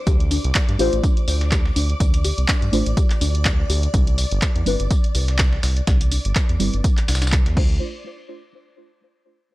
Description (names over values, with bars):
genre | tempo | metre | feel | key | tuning
deep house | 124 BPM | 4/4 | swing 56% on 16ths | D dorian | A4 = 437 Hz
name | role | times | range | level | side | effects
string machine, violins | texture | 0.0-7.8 s | D5 to D6 | -35 LUFS | equal | ensemble chorus, sidechain pumping
soft round pluck | arpeggios | 0.1-7.8 s | D4 to D5 | -32 LUFS | left 3 dB | chorus, sidechain pumping, analog delay
round analog bass | bass | 0.1-7.8 s | G1 to G2 | -20 LUFS | equal | sidechain pumping
dusty soul sampler-style drum kit | drums | 0.1-7.6 s | hi-hat, snare drum, tambourine | -31 LUFS | left 1 dB | sidechain pumping on perc, high-pass filter on perc, high-pass filter on snare, sidechain pumping on hats, high-pass filter on hats, high-pass filter on room
electronic kick drum | drums | 0.1-7.7 s | none | -19 LUFS | equal | overdrive
punchy analog drum machine | drums | 0.1-7.7 s | crash cymbal, handclaps, hi-hat | -26 LUFS | equal | none
deep mellow chord stab | stabs | 0.8-7.8 s | G3 to C5 | -25 LUFS | left 1 dB | chorus, sidechain pumping, tape echo
room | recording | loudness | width
little or no reverb | dry, gritty hardware recording | -17 LUFS | side -18 dB against mid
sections
0.0-7.8 A section; 7.8-9.5 B section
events
filter sweep on synth stab 0.0-7.8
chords
0.1 Dm7; 3.9 Cmaj7; 7.6 Dm7; 7.8 N.C.